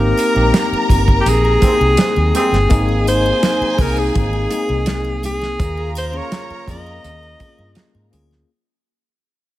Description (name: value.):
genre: lush 1970s-style soul.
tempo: 83 BPM.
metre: 4/4.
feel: straight.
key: Ab major.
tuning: A4 = 439 Hz.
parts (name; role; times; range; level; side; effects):
breathy alto saxophone; melody; 0.0-8.1 s; G4 to Eb5; -19 LUFS; equal; none.
warm symphonic violin section; second line; 0.0-8.1 s; Ab4 to Bb5; -25 LUFS; equal; none.
bell-like tine electric piano; accompaniment; 0.0-8.5 s; Bb3 to G5; -22 LUFS; left 3 dB; fast stereo tremolo.
vintage muted fingered electric bass; bass; 0.0-8.4 s; G1 to Ab2; -19 LUFS; equal; none.
warm soul drum kit; drums; 0.2-8.4 s; hi-hat, kick drum, snare drum; -18 LUFS; equal; none.
triangle; percussion; 0.2-8.5 s; none; -37 LUFS; left 4 dB; none.
congas; percussion; 0.5-8.3 s; none; -29 LUFS; right 3 dB; none.
mellow trombone section; stabs; 1.6-8.1 s; G2 to F4; -27 LUFS; right 2 dB; tape echo.
room: light reverb, small room ambience.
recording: none.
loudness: -13 LUFS.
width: side -15 dB against mid.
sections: 0.0-2.7 A section; 2.7-8.5 B section.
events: fade-out 2.7-8.5.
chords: 0.0 Abmaj9; 2.7 Abadd9; 5.6 Eb7sus4.